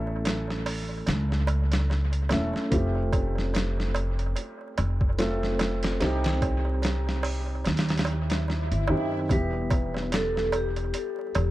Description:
trip hop; 73 BPM; 4/4; swing 57% on 16ths; A4 = 443 Hz
felt-muted upright piano; accompaniment; 0.0-11.5 s; Eb3 to A4; -31 LUFS; equal; harmonic tremolo, vintage 12-bit sampler grit, tape echo
upright bass; bass; 0.0-11.5 s; E1 to F#2; -27 LUFS; equal
darbuka; percussion; 0.1-11.5 s; -37 LUFS; right 4 dB; dub echo
boom bap sampler-style drum kit; drums; 0.3-11.5 s; hi-hat, kick drum, snare drum; -30 LUFS; equal; vintage 12-bit sampler grit, dub echo
swell; sound effects; 8.1-9.3 s; -36 LUFS; equal
vibraphone with medium hard mallets; melody; 9.3-11.5 s; G4 to B4; -30 LUFS; left 1 dB; tape echo
light reverb; echo-heavy mix, vinyl crackle; -24 LUFS; side -16 dB against mid
0.0-11.5 A section
swell 8.1-9.3
0.0 A; 2.7 Fadd9; 6.0 Cm; 9.3 Em
0.26 1.08 1.90 | 2.72 3.54 4.37 5.19 | 6.01 6.83 7.66 8.48 | 9.30 10.12 10.94

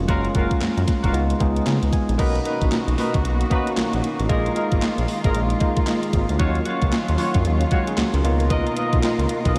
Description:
R&B, new jack swing; 114 BPM; 4/4; swing 61% on 16ths; A4 = 439 Hz
bell-like tine electric piano; accompaniment; 0.0-9.6 s; Gb3 to Ab5; -27 LUFS; equal
smooth synth bass; bass; 0.0-9.6 s; Gb1 to Db3; -25 LUFS; equal
mellow horn section; stabs; 0.1-9.6 s; D#4 to Eb5; -31 LUFS; equal; delay
gated 80s digital drum machine; drums; 0.1-9.6 s; crash cymbal, handclaps, hi-hat, kick drum, snare drum; -26 LUFS; equal; gated reverb, gated reverb snare, overdrive
muted studio string section; sustained chords; 2.2-9.6 s; B2 to Bb4; -31 LUFS; equal
moderate huge ambient reverb, RT60 6.3 s; dreamy mix soaked in reverb; -21 LUFS; mono
0.0-2.2 A section; 2.2-9.6 B section
tine electric piano fill 1.4-2.2, 5.6-6.4
0.1 Gbmaj7; 1.1 Db9; 2.2 Bmaj7; 4.3 Bb7sus4; 6.4 Ebm9; 8.2 Db13
| 0.08 0.61 1.14 1.66 | 2.19 2.71 3.24 3.77 | 4.29 4.82 5.35 5.87 | 6.40 6.92 7.45 7.98 | 8.50 9.03 9.56

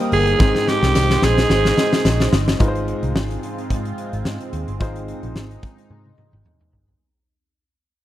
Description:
1980s-style pop; 109 BPM; 4/4; swing 55% on 16ths; Ab major; A4 = 439 Hz
raw garage guitar; accompaniment; 0.0-3.1 s; Eb3 to Ab4; -28 LUFS; left 1 dB; overdrive, analog chorus
warm concert grand piano; accompaniment; 0.0-7.0 s; Ab2 to C5; -27 LUFS; left 2 dB
lush unison pad; sustained chords; 0.0-7.0 s; Ab3 to Eb6; -29 LUFS; right 2 dB; chorus, phaser
huge arena drum kit; drums; 0.0-7.0 s; hi-hat, kick drum, snare drum, toms; -20 LUFS; left 1 dB
raspy alto saxophone; melody; 0.1-2.3 s; G4 to Ab4; -18 LUFS; right 2 dB; slapback echo
vintage muted picked electric bass; bass; 0.1-6.9 s; G1 to Ab2; -22 LUFS; equal
tambourine; percussion; 1.0-2.2 s; -37 LUFS; left 17 dB
small room ambience; dry, close 1970s-style studio recording; -16 LUFS; side -13 dB against mid
0.0-2.6 A section; 2.6-7.0 B section
drum fill 0.4-2.6, 5.9-7.0; fade-out 2.6-7.0
0.4 Ab; 2.6 Ab6
| 0.40 0.95 1.50 2.05 | 2.60 3.15 3.70 4.25 | 4.80 5.36 5.91 6.46

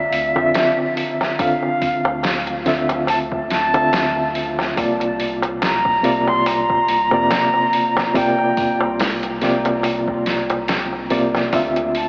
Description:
trip hop; 71 BPM; 4/4; swing 56% on 16ths; A4 = 440 Hz
concert flute; melody; 0.0-12.1 s; E5 to C6; -23 LUFS; equal; dub echo
barky reed electric piano; accompaniment; 0.0-12.1 s; C3 to F5; -23 LUFS; equal; overdrive, tremolo, tape echo
warm sub bass; bass; 0.1-12.1 s; C2 to F2; -37 LUFS; equal
trip hop sampler-style drum kit; drums; 0.1-12.1 s; hi-hat, kick drum, snare drum; -27 LUFS; equal
darbuka; percussion; 0.4-11.9 s; -29 LUFS; equal
wet huge ambient reverb, RT60 3.9 s; dreamy mix soaked in reverb, vinyl crackle, AM radio sound; -19 LUFS; mono
0.0-12.1 A section
0.0 Dm9; 4.8 C9sus4; 11.5 Dm9
0.55 | 1.39 2.23 3.08 3.93 | 4.77 5.62 6.46 7.31 | 8.15 9.00 9.84 10.69 | 11.53

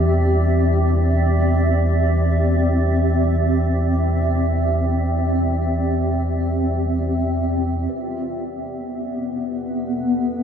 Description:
dark ambient drone; free time; A4 = 439 Hz
granular cloud pad; sustained chords; 0.0-10.4 s; B3 to G5; -21 LUFS; equal; built-in reverb
warm concert grand piano; arpeggios; 0.0-8.0 s; barely audible
deep rumbling drone; drone; 0.0-10.4 s; E2 to G3; -20 LUFS; equal; built-in reverb, wide subtle chorus
mellow horn-like synth lead; melody; 7.9-10.4 s; F4 to A4; -38 LUFS; left 1 dB; lush chorus
quartz singing bowl; texture; 7.9-10.4 s; B4; -48 LUFS; right 1 dB
wet huge ambient reverb, RT60 8.9 s; -18 LUFS; side -8 dB against mid
0.0-7.9 A section; 7.9-10.4 B section
0.0 Cadd9; 7.9 Em
free time

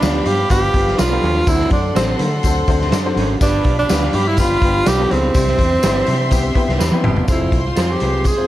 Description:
uptempo 1960s-style soul; 124 BPM; 4/4; straight; A4 = 441 Hz
breathy tenor saxophone; melody; 0.0-8.5 s; C4 to Ab4; -19 LUFS; right 2 dB
warm studio string section; second line; 0.0-8.5 s; G4 to C6; -25 LUFS; left 2 dB
clear upright piano; accompaniment; 0.0-8.5 s; G2 to C5; -25 LUFS; left 5 dB
overdriven tonewheel organ; sustained chords; 0.0-8.5 s; D3 to D4; -30 LUFS; equal
electric guitar through a small old amp; stabs; 0.0-7.9 s; C4 to C5; -27 LUFS; right 6 dB; tremolo, slapback echo
vintage muted fingered electric bass; bass; 0.0-8.3 s; F1 to D3; -20 LUFS; equal; tube saturation
raw garage drum kit; drums; 0.0-8.4 s; hi-hat, kick drum, snare drum, toms; -19 LUFS; equal
tambourine; percussion; 0.0-8.4 s; -31 LUFS; left 4 dB
warm baritone saxophone; riff; 1.2-7.6 s; D2 to C3; -25 LUFS; right 3 dB
light reverb; dark, warm production; -14 LUFS; side -14 dB against mid
0.0-7.3 A section; 7.3-8.5 B section
drum fill 6.8-7.3
0.0 G7; 1.5 D7; 3.4 G7; 5.4 Cmaj7; 7.3 Fm
0.02 0.51 0.99 | 1.48 1.96 2.44 2.93 | 3.41 3.90 4.38 4.87 | 5.35 5.84 6.32 6.80 | 7.29 7.77 8.26

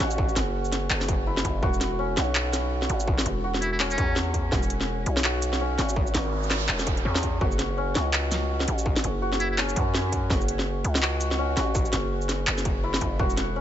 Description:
half-time drum and bass; 166 BPM; 4/4; swing 59% on 16ths, half-time; F# minor; A4 = 440 Hz
santur; arpeggios; 0.0-13.6 s; C#4 to F#4; -31 LUFS; left 1 dB; dub echo
growling 808-style bass; bass; 0.0-13.6 s; E1 to F#2; -27 LUFS; equal; tube saturation
industrial drum kit; drums; 0.0-13.5 s; handclaps, hi-hat, shaker, snare drum; -28 LUFS; equal
electronic kick drum; drums; 0.2-13.3 s; -27 LUFS; equal; distortion
trumpet with metal mute; melody; 3.6-4.2, 9.4-9.6 s; C#4 to E4; -34 LUFS; equal; dub echo
noise sweep; sound effects; 6.1-7.4 s; -35 LUFS; right 3 dB
little or no reverb; nothing above 7.8 kHz; -23 LUFS; side -11 dB against mid
0.0-13.6 A section
noise sweep 6.1-7.4
0.0 F#m; 1.6 E; 7.4 F#m
| 0.18 0.55 0.91 1.27 | 1.63 1.99 2.35 2.71 | 3.08 3.44 3.80 4.16 | 4.52 4.88 5.24 5.61 | 5.97 6.33 6.69 7.05 | 7.41 7.77 8.13 8.50 | 8.86 9.22 9.58 9.94 | 10.30 10.66 11.03 11.39 | 11.75 12.11 12.47 12.83 | 13.20 13.56

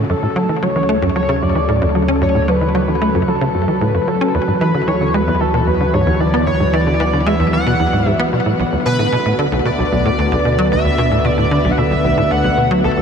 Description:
ambient, sequencer-driven space music; 113 BPM; 4/4; straight; A4 = 440 Hz
sweeping resonant pad; sustained chords; 0.0-13.0 s; C#3 to C#5; -19 LUFS; right 1 dB; chorus, shimmer reverb
tight sequencer bass; riff; 0.0-13.0 s; B1 to C#4; -17 LUFS; equal; wide subtle chorus, shimmer reverb, ping-pong delay
pulse-width lead; melody; 0.1-13.0 s; A4 to F#5; -19 LUFS; equal; chorus, cassette tape, shimmer reverb, ping-pong delay
analog drone; bass; 0.8-13.0 s; D2; -22 LUFS; equal; chorus
wet huge ambient reverb, RT60 8.4 s; -13 LUFS; side -6 dB against mid
0.1-13.0 A section
0.1 F#m/D; 4.3 Esus2/D; 8.6 Bm7
| 0.10 0.63 1.16 1.69 | 2.22 2.75 3.28 3.81 | 4.34 4.88 5.41 5.94 | 6.47 7.00 7.53 8.06 | 8.59 9.12 9.65 10.18 | 10.71 11.25 11.78 12.31 | 12.84

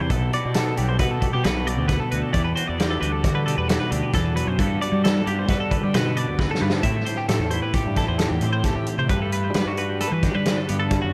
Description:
math rock and midwest emo; 133 BPM; 5/4; straight; G major; A4 = 440 Hz
twelve-string electric guitar; accompaniment; 0.0-11.1 s; G2 to B4; -29 LUFS; equal; lush chorus, tape echo
twelve-string electric guitar; arpeggios; 0.0-11.1 s; F#4 to E5; -30 LUFS; equal; spring reverb, tape echo
fuzz fingered electric bass; bass; 0.0-11.1 s; B1 to G3; -28 LUFS; equal; overdrive
loose indie drum kit; drums; 0.1-11.0 s; hi-hat, kick drum, snare drum; -27 LUFS; equal; tape echo
light reverb; echo-heavy mix; -22 LUFS; mono
0.0-6.8 A section; 6.8-11.1 B section
drum fill 6.4-6.8
0.1 Gmaj9/B; 2.3 Em9; 4.6 Gmaj9; 6.8 Am7; 9.1 Gmaj7
| 0.10 0.55 1.00 1.45 1.90 | 2.35 2.79 3.24 3.69 4.14 | 4.59 5.04 5.49 5.94 6.39 | 6.84 7.29 7.75 8.20 8.65 | 9.11 9.56 10.01 10.46 10.92

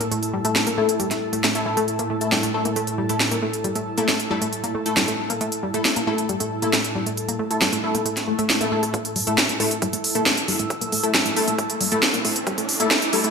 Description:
driving peak-time techno; 136 BPM; 4/4; straight; A4 = 439 Hz
analog pluck; riff; 0.0-13.3 s; G3 to A4; -28 LUFS; equal; chorus, tube saturation, sidechain pumping, ping-pong delay
deep dark ambient pad; drone; 0.0-9.0 s; A2; -32 LUFS; right 3 dB; chorus, built-in reverb, sidechain pumping
techno drum kit; drums; 0.0-13.3 s; hi-hat, snare drum; -22 LUFS; right 1 dB; sidechain pumping on hats, studio reverb, gated reverb
airy breathy pad; texture; 0.0-13.3 s; E4 to E6; -30 LUFS; right 1 dB; chorus, sidechain pumping
rave stab; stabs; 0.4-13.3 s; A3 to A4; -26 LUFS; left 3 dB; chorus, built-in reverb, sidechain pumping, ping-pong delay
swell and riser; sound effects; 8.2-13.3 s; -32 LUFS; left 1 dB
electronic kick drum; drums; 8.9-13.2 s; -32 LUFS; right 1 dB
moderate lush hall reverb, RT60 1.9 s, digital ambience; bright 1980s-style digital production, high-pass filter; -19 LUFS; side -5 dB against mid
0.0-8.9 A section; 8.9-13.3 B section
swell 8.2-8.9; build-up 8.9-13.3; riser 8.9-13.3; filter sweep on synth arpeggio sound 8.9-13.3
0.0 A5
| 0.12 0.56 1.00 1.44 | 1.88 2.32 2.76 3.20 | 3.64 4.08 4.53 4.97 | 5.41 5.85 6.29 6.73 | 7.17 7.62 8.06 8.50 | 8.94 9.38 9.82 10.26 | 10.70 11.14 11.59 12.03 | 12.47 12.91

